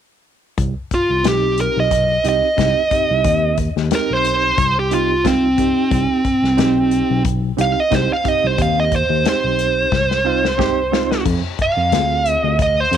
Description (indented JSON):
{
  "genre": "straight-eighth soul blues",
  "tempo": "90 BPM",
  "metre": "4/4",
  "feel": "swing 55% on 16ths",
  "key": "C harmonic minor",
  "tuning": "A4 = 440 Hz",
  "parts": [
    { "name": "tine electric piano", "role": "bass", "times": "0.6-13.0 s", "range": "B1 to F2", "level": "-21 LUFS", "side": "left 2 dB", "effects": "slow stereo tremolo" },
    { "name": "warm soul drum kit", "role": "drums", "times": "0.6-13.0 s", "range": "crash cymbal, hi-hat, kick drum, snare drum", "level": "-23 LUFS", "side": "left 5 dB", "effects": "none" },
    { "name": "dark smooth lead guitar", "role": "melody", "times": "0.9-13.0 s", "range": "C4 to F5", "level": "-16 LUFS", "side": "right 1 dB", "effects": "overdrive" },
    { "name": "overdriven reed electric piano", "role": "accompaniment", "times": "1.2-13.0 s", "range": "C4 to Ab4", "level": "-24 LUFS", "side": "right 13 dB", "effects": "fast tremolo" }
  ],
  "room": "light reverb, small room ambience",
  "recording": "1960s-style stereo",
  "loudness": "-14 LUFS",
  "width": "side -9 dB against mid",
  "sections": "0.6-13.0 A section",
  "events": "lead electric guitar solo 0.6-13.0; drum fill 9.9-11.3",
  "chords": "0.6 Cm; 11.3 Fm",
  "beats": "| 0.58 1.25 1.92 2.58 | 3.25 3.92 4.58 5.25 | 5.92 6.59 7.25 7.92 | 8.59 9.26 9.92 10.59 | 11.26 11.92 12.59"
}